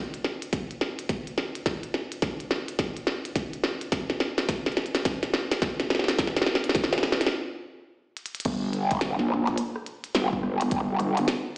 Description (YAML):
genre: glitch hop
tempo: 106 BPM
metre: 4/4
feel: swing 63% on 16ths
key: G minor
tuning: A4 = 440 Hz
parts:
  - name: glitchy drum kit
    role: drums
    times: 0.1-11.4 s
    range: crash cymbal, hi-hat, rim click, snare drum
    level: -26 LUFS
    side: equal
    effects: none
  - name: electronic kick drum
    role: drums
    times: 0.5-10.9 s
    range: none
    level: -33 LUFS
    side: equal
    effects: none
  - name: growl bass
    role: bass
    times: 8.5-11.3 s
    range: G1 to Bb1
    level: -24 LUFS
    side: equal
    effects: chorus
room: wet studio reverb, RT60 0.6 s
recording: played on a big sound system in a bare room, large studio reverb, small speaker sound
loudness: -25 LUFS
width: side -26 dB against mid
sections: 0.0-8.5 A section; 8.5-11.6 B section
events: build-up 0.0-8.5; drum fill 0.0-7.3, 8.2; stop 7.3-8.5; drop 8.5-11.6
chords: none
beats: 0.53 1.10 | 1.66 2.23 2.79 3.36 | 3.93 4.49 5.06 5.62 | 6.19 6.76 7.32 7.89 | 8.46 9.02 9.59 10.15 | 10.72 11.29